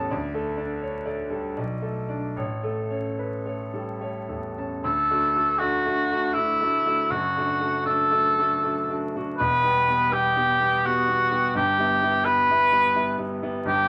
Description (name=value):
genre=classical, romantic duo for cor anglais and grand piano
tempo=72-87 BPM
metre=3/4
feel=rubato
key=D major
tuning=A4 = 438 Hz
part: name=bright concert grand piano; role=accompaniment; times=0.0-13.9 s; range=E1 to A5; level=-30 LUFS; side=equal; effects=none
part: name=warm cor anglais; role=melody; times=4.8-13.9 s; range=E4 to B4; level=-23 LUFS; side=equal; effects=none
room=moderate studio reverb, RT60 0.7 s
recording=vinyl crackle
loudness=-24 LUFS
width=mono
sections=0.0-4.8 A section; 4.8-13.9 B section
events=none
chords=0.1 D5; 1.6 Bm7; 2.4 A; 4.8 D; 7.1 D/F#; 9.4 Em; 11.6 Em/G